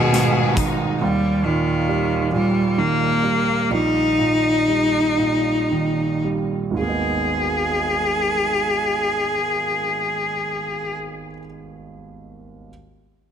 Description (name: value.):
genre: six-eight pop ballad.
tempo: 35-46 BPM (dotted quarters).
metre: 6/8.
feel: straight.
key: G# harmonic minor.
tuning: A4 = 440 Hz.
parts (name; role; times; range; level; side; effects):
clear cello; melody; 0.0-11.0 s; B2 to G#4; -20 LUFS; left 1 dB; none.
rich studio violin section; second line; 0.0-1.0 s; D#4 to G#4; -27 LUFS; left 4 dB; none.
warm grand piano; accompaniment; 0.0-12.7 s; D#1 to D#4; -24 LUFS; right 4 dB; none.
bright studio string section; sustained chords; 0.0-1.0 s; D#3 to D#4; -36 LUFS; left 4 dB; none.
modern studio drum kit; drums; 0.1-0.8 s; hi-hat, kick drum, snare drum; -25 LUFS; left 1 dB; none.
room: moderate concert hall reverb, RT60 2.1 s.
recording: heavily compressed radio sound, multiband compression.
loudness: -18 LUFS.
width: side -8 dB against mid.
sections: 0.0-1.0 A section; 1.0-6.8 B section; 6.8-10.2 C section.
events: slowing down 1.0-6.8.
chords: 0.0 G#m; 1.0 D#; 6.8 G#madd9.